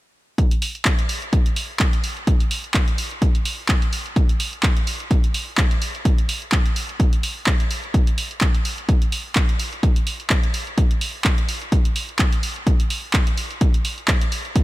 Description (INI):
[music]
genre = house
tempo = 127 BPM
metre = 4/4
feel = swing 55% on 16ths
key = none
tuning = none
[part]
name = electronic kick drum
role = drums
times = 0.4-14.6 s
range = none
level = -18 LUFS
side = equal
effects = none
[part]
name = punchy analog drum machine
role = drums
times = 0.4-14.6 s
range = handclaps, hi-hat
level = -24 LUFS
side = right 1 dB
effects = none
[sound]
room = little or no reverb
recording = none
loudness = -18 LUFS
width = side -18 dB against mid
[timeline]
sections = 0.4-14.6 A section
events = none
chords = none